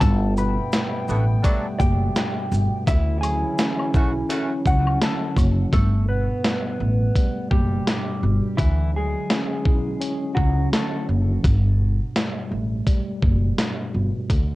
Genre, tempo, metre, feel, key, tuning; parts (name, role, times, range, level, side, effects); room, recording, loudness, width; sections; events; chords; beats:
hip hop, boom-bap hip-hop; 84 BPM; 4/4; swing 58% on 16ths; G lydian; A4 = 439 Hz
mellow electric guitar; melody; 0.0-11.1 s; E3 to B5; -28 LUFS; equal; high-pass filter, low-pass filter, cassette tape, analog delay
mellow tine electric piano; accompaniment; 0.0-14.6 s; G2 to E4; -28 LUFS; equal; medium stereo tremolo, high-pass filter, low-pass filter, cassette tape
dark analog pad; sustained chords; 0.0-5.7 s; E3 to G5; -32 LUFS; right 1 dB; chorus, high-pass filter, low-pass filter, cassette tape
upright bass; bass; 0.0-14.6 s; F#1 to D2; -21 LUFS; equal
dusty soul sampler-style drum kit; drums; 0.0-14.5 s; hi-hat, kick drum, shaker, snare drum; -21 LUFS; equal; cassette tape
maracas and woodblock; percussion; 0.0-5.6 s; -36 LUFS; left 4 dB
mellow horn section; stabs; 1.1-4.5 s; C#3 to A4; -31 LUFS; right 1 dB; high-pass filter, low-pass filter, cassette tape, analog delay
little or no reverb; home recording on cassette; -19 LUFS; side -18 dB against mid
0.0-5.7 A section; 5.7-14.6 B section
0.0 Gmaj9; 2.9 Dmaj9; 5.7 Gadd9; 8.6 Dmaj9; 11.4 Gadd9
| 0.01 0.73 1.44 2.15 | 2.87 3.58 4.30 5.01 | 5.73 6.44 7.16 7.87 | 8.58 9.30 10.01 10.73 | 11.44 12.15 12.87 13.58 | 14.30